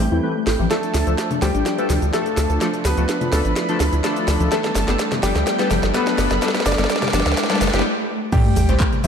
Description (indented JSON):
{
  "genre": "progressive house",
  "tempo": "126 BPM",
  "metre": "4/4",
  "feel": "straight",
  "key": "unclear",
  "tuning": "A4 = 440 Hz",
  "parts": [
    { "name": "bright concert grand piano", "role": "melody", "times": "0.0-9.1 s", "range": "E3 to G5", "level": "-26 LUFS", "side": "left 1 dB", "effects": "digital delay" },
    { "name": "soft supersaw", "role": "second line", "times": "0.0-9.1 s", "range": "E5 to G6", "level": "-30 LUFS", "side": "equal", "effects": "sidechain pumping, digital delay" },
    { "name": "warm analog pad", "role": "sustained chords", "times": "0.0-9.1 s", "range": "C3 to D4", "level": "-29 LUFS", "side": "right 2 dB", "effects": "chorus, vintage 12-bit sampler grit, sidechain pumping" },
    { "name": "soft round pluck", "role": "arpeggios", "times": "0.0-9.1 s", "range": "A3 to D5", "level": "-27 LUFS", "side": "left 1 dB", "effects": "lush chorus, sidechain pumping, digital delay" },
    { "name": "chorused polysynth", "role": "stabs", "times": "0.0-9.1 s", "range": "E3 to B4", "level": "-25 LUFS", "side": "left 3 dB", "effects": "sidechain pumping, digital delay" },
    { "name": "tight sequencer bass", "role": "bass", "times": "0.0-9.1 s", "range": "G1 to E2", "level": "-21 LUFS", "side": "right 1 dB", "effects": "tube saturation, sidechain pumping" },
    { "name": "house drum kit", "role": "drums", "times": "0.5-9.1 s", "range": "crash cymbal, handclaps, hi-hat, shaker, snare drum", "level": "-24 LUFS", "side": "equal", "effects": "overdrive, sidechain pumping on hats, sidechain pumping on perc, sidechain pumping on cymbals" },
    { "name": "bongos and congas", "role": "percussion", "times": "0.5-9.1 s", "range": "none", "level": "-29 LUFS", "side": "left 3 dB", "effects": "sidechain pumping on perc" },
    { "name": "riser and sub drop", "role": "sound effects", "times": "2.2-9.1 s", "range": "none", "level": "-26 LUFS", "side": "equal", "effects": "none" },
    { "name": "electronic kick drum", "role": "drums", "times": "8.3-8.9 s", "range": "none", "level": "-18 LUFS", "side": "right 1 dB", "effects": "overdrive" }
  ],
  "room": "moderate lush hall reverb, RT60 2.0 s, digital ambience",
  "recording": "dark, warm production",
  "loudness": "-17 LUFS",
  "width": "side -7 dB against mid",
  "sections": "0.0-8.3 A section",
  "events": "build-up 0.0-8.3; drum fill 0.0-7.8; filter sweep on synth pluck 0.0-8.3; filter sweep on analog polysynth 0.0-8.3; filter sweep on supersaw synth 0.0-8.3; riser 2.2-7.8; stop 7.8-8.3; impact 8.3-9.1",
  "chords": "0.0 Am7; 0.7 Dm; 4.5 Gadd9; 8.3 Am7",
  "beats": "0.23 | 0.71 1.18 1.66 2.13 | 2.61 3.09 3.56 4.04 | 4.52 4.99 5.47 5.94 | 6.42 6.90 7.37 7.85 | 8.32 8.80"
}